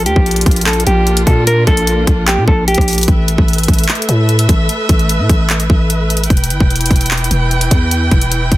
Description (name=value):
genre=hip hop, trap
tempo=149 BPM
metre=4/4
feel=half-time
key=unclear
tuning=A4 = 439 Hz
part: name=mellow electric guitar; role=melody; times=0.0-3.1 s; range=G4 to Bb4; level=-16 LUFS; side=equal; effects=low-pass filter, ping-pong delay
part: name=warm symphonic string section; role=sustained chords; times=0.0-8.6 s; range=E3 to G5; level=-20 LUFS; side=right 1 dB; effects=none
part: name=growling 808-style bass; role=bass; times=0.0-8.6 s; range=E1 to Bb2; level=-14 LUFS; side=equal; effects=none
part: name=trap drum kit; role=drums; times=0.1-8.6 s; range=handclaps, hi-hat, kick drum, rim click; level=-13 LUFS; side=equal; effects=overdrive
room=digital ambience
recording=dense, heavily limited modern master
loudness=-10 LUFS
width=side -16 dB against mid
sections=0.0-3.1 A section; 3.1-8.6 B section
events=none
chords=0.0 Bb; 3.1 Asus2; 6.3 Em